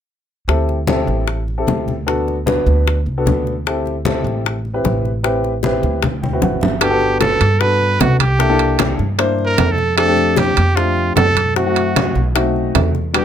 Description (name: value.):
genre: Afro-Cuban jazz.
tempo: 152 BPM.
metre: 4/4.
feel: straight.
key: G major.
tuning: A4 = 440 Hz.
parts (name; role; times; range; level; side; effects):
warm grand piano; accompaniment; 0.5-13.2 s; G3 to G5; -19 LUFS; left 2 dB; none.
upright bass; bass; 0.5-13.2 s; G1 to G2; -19 LUFS; right 1 dB; none.
bongos; percussion; 0.5-13.2 s; none; -22 LUFS; left 8 dB; none.
congas; percussion; 0.5-13.2 s; none; -22 LUFS; left 1 dB; none.
clear trumpet; melody; 6.8-13.2 s; F4 to B4; -18 LUFS; right 3 dB; none.
timbales; percussion; 6.8-13.2 s; none; -20 LUFS; right 10 dB; none.
room: light reverb.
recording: close, detailed microphones.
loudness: -14 LUFS.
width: side -9 dB against mid.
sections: 0.5-6.8 A section; 6.8-13.2 B section.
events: drum fill 6.0-6.8; grand piano fill 6.0-6.8.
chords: 0.5 D7sus4; 2.1 Bm7; 3.7 Am7; 6.0 D13; 6.8 Gmaj9; 8.4 C13; 10.0 F6; 11.6 F#m7b5; 12.4 B7b9.